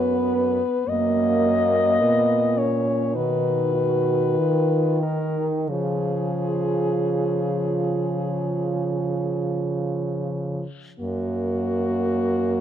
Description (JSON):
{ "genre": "classical, lyrical piece for horn quartet", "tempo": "44-54 BPM", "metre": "4/4", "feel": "rubato", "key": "F# major", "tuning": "A4 = 441 Hz", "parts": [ { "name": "clear French horn", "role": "melody", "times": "0.0-12.6 s", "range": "F#4 to D#5", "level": "-24 LUFS", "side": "left 5 dB", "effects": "none" }, { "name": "warm French horn", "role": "second line", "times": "0.0-10.3 s", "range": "A#3 to F#4", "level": "-28 LUFS", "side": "right 12 dB", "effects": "none" }, { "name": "mellow French horn", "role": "accompaniment", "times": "0.0-12.6 s", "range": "D#3 to B3", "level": "-25 LUFS", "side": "equal", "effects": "none" }, { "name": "mellow French horn", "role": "bass", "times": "0.0-12.6 s", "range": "F#2 to D#3", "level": "-27 LUFS", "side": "right 2 dB", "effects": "none" } ], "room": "light reverb", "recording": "close, detailed microphones", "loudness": "-20 LUFS", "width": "side -9 dB against mid", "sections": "0.0-11.0 A section; 11.0-12.6 A section", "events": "none", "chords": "0.0 B5/F#; 0.9 F#; 3.2 B; 5.7 C#; 11.0 F#" }